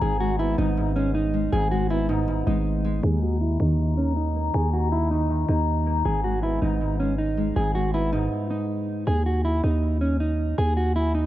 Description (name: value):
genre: hip hop, trap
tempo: 159 BPM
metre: 4/4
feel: half-time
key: G# minor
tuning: A4 = 439 Hz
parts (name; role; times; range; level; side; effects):
- mellow electric guitar; melody; 0.0-11.3 s; C#4 to G#4; -26 LUFS; right 2 dB; spring reverb, low-pass filter, tape echo
- concert harp; accompaniment; 0.0-11.0 s; G#2 to D#4; -28 LUFS; left 2 dB; low-pass filter
- growling 808-style bass; bass; 0.0-11.3 s; G#1 to D#2; -24 LUFS; equal; none
room: studio ambience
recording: none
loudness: -21 LUFS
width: side -14 dB against mid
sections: 0.0-3.0 A section; 3.0-9.1 B section; 9.1-11.3 C section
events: filter sweep 3.0-9.1; stop 8.3-9.1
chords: 0.0 G#m; 3.0 D#5; 6.1 G#m; 9.1 N.C.